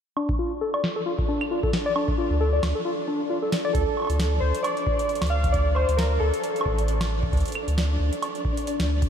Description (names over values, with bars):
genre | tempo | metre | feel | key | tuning
IDM | 134 BPM | 4/4 | swing 56% on 16ths | D minor | A4 = 436 Hz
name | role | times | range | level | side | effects
overdriven tine electric piano | arpeggios | 0.2-3.7 s | D4 to D5 | -28 LUFS | left 2 dB | auto-pan, low-pass filter, ping-pong delay
booming analog drum machine | drums | 0.2-9.1 s | hi-hat, snare drum, woodblock | -31 LUFS | right 1 dB | low-pass filter on perc, low-pass filter on snare, low-pass filter on hats, tape echo
pulsing gated texture | texture | 0.5-9.1 s | D4 to D5 | -33 LUFS | equal | chorus, built-in reverb
electronic kick drum | drums | 0.3-9.1 s | none | -27 LUFS | equal | none
warm sub bass | bass | 2.3-9.1 s | A1 to D2 | -23 LUFS | equal | none
warbly lo-fi synth keys | melody | 3.7-7.1 s | A4 to F5 | -27 LUFS | equal | chorus, ping-pong delay
room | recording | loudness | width
moderate huge ambient reverb, RT60 7.8 s | dreamy mix soaked in reverb | -22 LUFS | side -8 dB against mid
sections
0.2-3.7 A section; 3.7-9.1 B section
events
filter sweep on drum 0.2-3.7; filter sweep on tine electric piano 0.2-3.7; break 2.9-3.7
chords
0.2 Dm; 3.7 D5